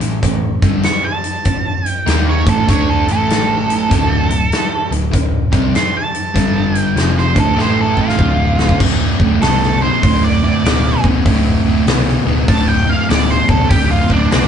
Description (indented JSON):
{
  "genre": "blues rock power trio and southern rock",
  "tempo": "98 BPM",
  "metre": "4/4",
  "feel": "swing 64% on 8ths",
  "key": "D minor",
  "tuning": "A4 = 440 Hz",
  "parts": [
    { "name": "fuzz guitar", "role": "riff", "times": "0.0-14.5 s", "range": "D2 to Eb4", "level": "-16 LUFS", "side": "equal", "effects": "distortion" },
    { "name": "vintage muted picked electric bass", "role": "bass", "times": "0.0-14.5 s", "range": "D1 to Eb2", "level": "-18 LUFS", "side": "equal", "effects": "none" },
    { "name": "huge arena drum kit", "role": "drums", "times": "0.0-14.5 s", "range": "crash cymbal, hi-hat, kick drum, snare drum", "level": "-16 LUFS", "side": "equal", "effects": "none" },
    { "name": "octave-fuzz lead guitar", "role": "melody", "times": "0.8-14.5 s", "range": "D4 to C#6", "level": "-18 LUFS", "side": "right 4 dB", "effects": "distortion" }
  ],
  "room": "moderate studio reverb, RT60 0.5 s",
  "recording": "band playing live in one room, nothing above 10.4 kHz",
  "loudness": "-12 LUFS",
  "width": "side -8 dB against mid",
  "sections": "0.0-8.8 A section; 8.8-14.5 B section",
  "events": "drum fill 7.6-8.8; lead electric guitar solo 8.8-14.5",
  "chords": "0.0 A5; 3.9 D5; 6.4 G5; 7.0 Dm7; 7.6 A5; 8.2 Dm; 8.8 D5",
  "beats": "0.23 0.84 | 1.46 2.07 2.68 3.29 | 3.91 4.52 5.13 5.75 | 6.36 6.97 7.58 8.19 | 8.81 9.42 10.03 10.64 | 11.25 11.86 12.47 13.08 | 13.70 14.31"
}